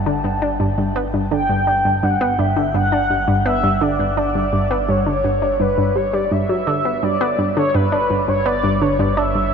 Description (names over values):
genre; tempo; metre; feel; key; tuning
ambient, sequencer-driven space music; 84 BPM; 4/4; straight; G lydian; A4 = 439 Hz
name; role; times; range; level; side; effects
expressive portamento lead; melody; 0.0-9.5 s; B4 to A5; -19 LUFS; equal; analog chorus, shimmer reverb, analog delay
analog pluck; riff; 0.0-9.4 s; G2 to D4; -19 LUFS; equal; chorus, analog delay
fat analog bass; bass; 0.0-9.5 s; G1; -28 LUFS; equal; none
room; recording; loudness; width
wet huge ambient reverb, RT60 8.7 s; none; -16 LUFS; side -6 dB against mid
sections
0.0-9.5 A section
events
fade-in on analog synth bass 0.0-9.5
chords
0.0 Gadd9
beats
0.60 | 1.31 2.03 2.74 3.46 | 4.17 4.88 5.60 6.31 | 7.03 7.74 8.46 9.17